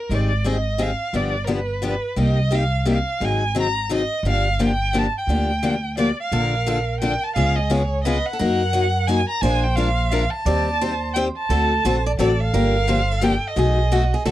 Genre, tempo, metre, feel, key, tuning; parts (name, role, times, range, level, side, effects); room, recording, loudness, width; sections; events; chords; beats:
acoustic string swing (jazz manouche); 174 BPM; 3/4; swing 62% on 8ths; G minor; A4 = 440 Hz
warm violin; melody; 0.0-14.3 s; Bb4 to Bb5; -24 LUFS; right 1 dB
picked steel-string acoustic guitar; accompaniment; 0.1-14.3 s; B2 to C5; -22 LUFS; left 3 dB
upright bass; bass; 0.1-14.3 s; G1 to Gb2; -22 LUFS; right 1 dB
picked steel-string acoustic guitar; second line; 6.3-14.3 s; F#4 to D5; -28 LUFS; right 5 dB
light reverb; dry, close 1970s-style studio recording; -18 LUFS; side -14 dB against mid
0.0-6.3 A section; 6.3-14.3 B section
0.1 Abmaj7#11; 1.1 G7; 2.2 Cm7; 3.2 Ab9; 4.2 Gm7; 6.3 Bbmaj7; 7.4 Db7; 8.4 Gb6; 9.4 Bb7; 10.5 Eb6; 11.5 D7; 12.5 Gm7; 13.6 B6
| 0.09 0.44 0.79 | 1.13 1.48 1.82 | 2.17 2.52 2.86 | 3.21 3.55 3.90 | 4.25 4.59 4.94 | 5.28 5.63 5.97 | 6.32 6.67 7.01 | 7.36 7.70 8.05 | 8.39 8.74 9.08 | 9.43 9.78 10.12 | 10.46 10.81 11.16 | 11.50 11.85 12.19 | 12.54 12.88 13.23 | 13.57 13.92 14.26